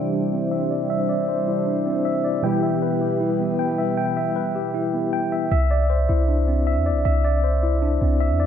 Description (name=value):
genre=hip hop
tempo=156 BPM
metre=4/4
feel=half-time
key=unclear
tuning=A4 = 439 Hz
part: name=warbly lo-fi synth keys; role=accompaniment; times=0.0-5.5 s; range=B2 to G4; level=-25 LUFS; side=right 1 dB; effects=chorus, low-pass filter
part: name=mellow brass ensemble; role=sustained chords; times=0.0-5.5 s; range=G3 to C5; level=-28 LUFS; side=equal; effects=low-pass filter
part: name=mellow tine electric piano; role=arpeggios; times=0.0-8.5 s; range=B3 to G5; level=-23 LUFS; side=left 1 dB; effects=medium stereo tremolo, low-pass filter, digital delay
part: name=warm 808-style bass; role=bass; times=5.5-8.5 s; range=C2 to E2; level=-19 LUFS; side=equal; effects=none
room=light reverb, studio reverb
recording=none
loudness=-19 LUFS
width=side -9 dB against mid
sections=0.0-5.5 A section; 5.5-8.5 B section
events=filter sweep 0.0-5.5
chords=0.0 Cadd9; 2.4 Em; 5.5 Cadd9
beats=0.13 0.51 | 0.90 1.28 1.67 2.05 | 2.44 2.82 3.21 3.59 | 3.98 4.36 4.74 5.13 | 5.51 5.90 6.28 6.67 | 7.05 7.44 7.82 8.21